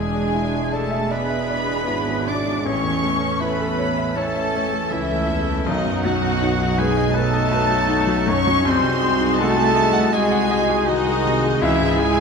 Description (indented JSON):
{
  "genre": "classical, romantic movement for piano and orchestra",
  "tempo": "80 BPM",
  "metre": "4/4",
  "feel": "rubato",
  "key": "E major",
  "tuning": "A4 = 439 Hz",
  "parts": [
    { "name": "clear baby grand piano", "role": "melody", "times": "0.0-12.2 s", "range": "A1 to F#5", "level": "-24 LUFS", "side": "left 3 dB", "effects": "none" },
    { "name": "rich chamber violin section", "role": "melody", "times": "0.0-12.2 s", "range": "D#5 to D6", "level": "-30 LUFS", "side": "left 1 dB", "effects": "none" },
    { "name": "bright large flute ensemble", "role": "second line", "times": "0.0-12.2 s", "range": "D#5 to D6", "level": "-28 LUFS", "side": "equal", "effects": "none" },
    { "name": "clear oboe", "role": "second line", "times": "0.0-12.2 s", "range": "D#4 to D5", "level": "-31 LUFS", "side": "right 1 dB", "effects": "none" },
    { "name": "dark clarinet", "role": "second line", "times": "0.0-12.2 s", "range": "C#4 to F#4", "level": "-30 LUFS", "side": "left 2 dB", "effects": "none" },
    { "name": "rich studio violin section", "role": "second line", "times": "0.0-12.2 s", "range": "D#5 to D6", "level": "-32 LUFS", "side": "left 2 dB", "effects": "none" },
    { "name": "rich symphonic viola section", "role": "accompaniment", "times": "0.0-12.2 s", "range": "C#4 to A4", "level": "-30 LUFS", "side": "right 1 dB", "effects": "none" },
    { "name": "warm bassoon", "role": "accompaniment", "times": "0.0-12.2 s", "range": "E3 to G#3", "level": "-31 LUFS", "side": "right 3 dB", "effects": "none" },
    { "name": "dark French horn section", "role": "sustained chords", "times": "0.0-12.2 s", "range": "D#3 to D4", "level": "-27 LUFS", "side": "left 3 dB", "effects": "none" },
    { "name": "mellow trumpet section", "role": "stabs", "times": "0.0-12.2 s", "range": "D#4 to D5", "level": "-28 LUFS", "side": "right 1 dB", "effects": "none" },
    { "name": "clear symphonic cello section", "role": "bass", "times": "0.0-12.2 s", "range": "D#3 to D4", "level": "-29 LUFS", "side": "right 5 dB", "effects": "none" },
    { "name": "clear symphonic double bass section", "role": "bass", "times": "0.0-12.2 s", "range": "E1 to C#2", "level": "-28 LUFS", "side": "right 3 dB", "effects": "none" },
    { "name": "mellow tuba", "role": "bass", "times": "0.0-12.2 s", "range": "E1 to C#2", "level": "-30 LUFS", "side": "right 4 dB", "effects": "none" },
    { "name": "timpani", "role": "percussion", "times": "0.0-0.7 s", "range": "E2", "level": "-37 LUFS", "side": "right 1 dB", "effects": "none" }
  ],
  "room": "moderate scoring stage reverb, RT60 1.8 s",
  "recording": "none",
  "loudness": "-17 LUFS",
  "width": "side -5 dB against mid",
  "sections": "0.0-12.2 A section",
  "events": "none",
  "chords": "0.0 E7; 2.7 A; 5.7 B7; 8.7 G#7/B#; 11.6 C#m"
}